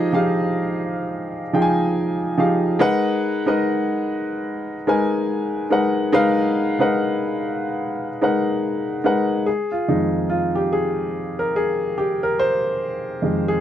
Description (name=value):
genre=R&B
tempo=72 BPM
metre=4/4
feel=swing 60% on 16ths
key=unclear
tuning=A4 = 441 Hz
part: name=warm upright piano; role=solo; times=0.0-13.6 s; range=F2 to Ab5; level=-18 LUFS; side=equal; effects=none
room=light reverb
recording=dry, close 1970s-style studio recording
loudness=-19 LUFS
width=side -10 dB against mid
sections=0.0-9.5 A section; 9.5-13.6 B section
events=upright piano solo 9.5-13.6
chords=0.0 Fm9; 2.8 Abm9; 9.5 Fm7